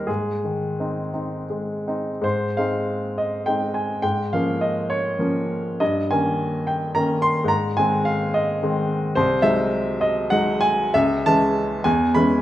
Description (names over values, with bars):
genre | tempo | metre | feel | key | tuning
classical, romantic character piece for solo piano | 51-75 BPM (dotted quarters) | 6/8 | rubato | Ab major, C# minor from 9.2 s | A4 = 440 Hz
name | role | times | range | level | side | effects
clear baby grand piano | solo | 0.0-12.4 s | B#1 to C6 | -19 LUFS | equal | none
room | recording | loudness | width
moderate recital hall reverb, RT60 1.4 s | none | -19 LUFS | side -13 dB against mid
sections
0.0-2.2 A section; 2.2-12.4 B section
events
none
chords
0.1 Ab; 4.0 Bbm7/Ab; 5.8 Eb7/G; 7.5 Ab; 9.2 G#7/B#; 10.9 C#m; 11.9 C#m/E